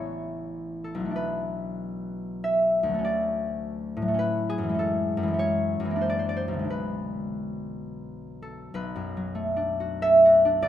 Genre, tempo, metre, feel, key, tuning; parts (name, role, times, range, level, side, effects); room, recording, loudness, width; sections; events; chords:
classical, solo harp piece; 85-107 BPM; 3/4; rubato; B dorian; A4 = 441 Hz
concert harp; solo; 0.0-10.7 s; A1 to E5; -24 LUFS; equal
moderate recital hall reverb, RT60 1.8 s; -23 LUFS; side -11 dB against mid
0.0-8.7 A section; 8.7-10.7 A section
0.0 Aadd9; 1.2 Bm7; 3.0 Dmaj7; 4.2 A69; 4.8 F#m9; 6.0 F#aug7; 6.7 Bm6; 8.7 Bm7